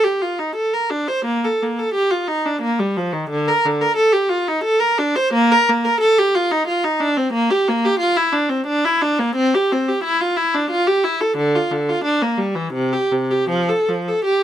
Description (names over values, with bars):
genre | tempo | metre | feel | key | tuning
classical, baroque-style suite movement for unaccompanied viola | 89 BPM | 3/4 | rubato | Bb major | A4 = 441 Hz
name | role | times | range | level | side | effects
clear viola | solo | 0.0-14.4 s | C3 to C5 | -16 LUFS | equal | none
room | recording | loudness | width
little or no reverb | close, detailed microphones | -16 LUFS | side -11 dB against mid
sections
0.0-14.4 A section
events
none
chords
none